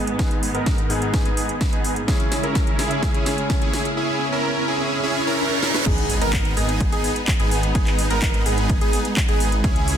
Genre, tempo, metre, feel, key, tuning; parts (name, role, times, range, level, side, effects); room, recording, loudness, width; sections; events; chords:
EDM, festival progressive house; 127 BPM; 4/4; straight; G# minor; A4 = 442 Hz
bright concert grand piano; accompaniment; 0.0-5.9 s; G#2 to G#4; -29 LUFS; left 3 dB; sidechain pumping, ping-pong delay
dark symphonic string section; sustained chords; 0.0-10.0 s; G#2 to E4; -30 LUFS; right 2 dB; sidechain pumping
supersaw chords; riff; 0.0-9.9 s; B3 to B4; -24 LUFS; right 1 dB; sidechain pumping, low-pass filter, ping-pong delay
riser, reverse cymbal and impact; sound effects; 1.9-7.8 s; -30 LUFS; right 2 dB
house drum kit; drums; 0.1-10.0 s; crash cymbal, handclaps, hi-hat, snare drum; -27 LUFS; equal; overdrive
electronic kick drum; drums; 0.2-9.7 s; -22 LUFS; equal; overdrive
plucky unison lead; arpeggios; 5.9-9.9 s; G#4 to A#4; -28 LUFS; right 1 dB; wide subtle chorus, sidechain pumping, ping-pong delay
detuned saw bass; bass; 5.9-10.0 s; G#1 to C#2; -24 LUFS; equal; sidechain pumping
light reverb, digital ambience; dense, heavily limited modern master; -18 LUFS; side -9 dB against mid
0.0-5.9 A section; 5.9-10.0 B section
build-up 0.0-5.9; drum fill 0.0-4.0, 5.6; filter sweep on supersaw synth 0.0-5.9; riser 1.9-5.9; reverse cymbal 4.9-5.9; drop 5.9-10.0; impact 5.9-7.8
0.0 G#m; 2.1 C#m; 5.9 G#m